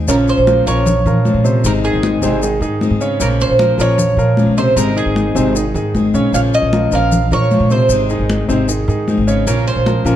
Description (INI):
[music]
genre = latin, Cuban son and guajira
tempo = 153 BPM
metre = 4/4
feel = straight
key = Bb minor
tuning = A4 = 439 Hz
[part]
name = picked steel-string acoustic guitar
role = accompaniment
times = 0.0-10.2 s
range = Eb3 to Ab4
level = -21 LUFS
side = left 5 dB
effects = none
[part]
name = upright bass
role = bass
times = 0.0-10.2 s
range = Ab1 to Bb2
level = -17 LUFS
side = right 1 dB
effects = none
[part]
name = Cuban tres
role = melody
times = 0.1-10.2 s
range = Ab4 to F5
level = -17 LUFS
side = right 2 dB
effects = none
[part]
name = warm grand piano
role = arpeggios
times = 0.1-10.2 s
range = C3 to Db5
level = -19 LUFS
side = right 1 dB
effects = none
[part]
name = congas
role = percussion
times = 0.1-10.2 s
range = none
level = -20 LUFS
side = left 3 dB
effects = none
[part]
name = maracas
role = percussion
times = 0.1-10.2 s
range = none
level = -28 LUFS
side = left 6 dB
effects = none
[sound]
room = wet large studio reverb, RT60 1.4 s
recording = dark, warm production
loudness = -12 LUFS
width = side -11 dB against mid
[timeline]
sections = 0.1-10.2 A section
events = none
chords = 0.1 Bbm; 1.6 Ab; 3.2 Bbm; 4.8 Ab; 6.3 Bbm; 7.9 Ab; 9.5 Bbm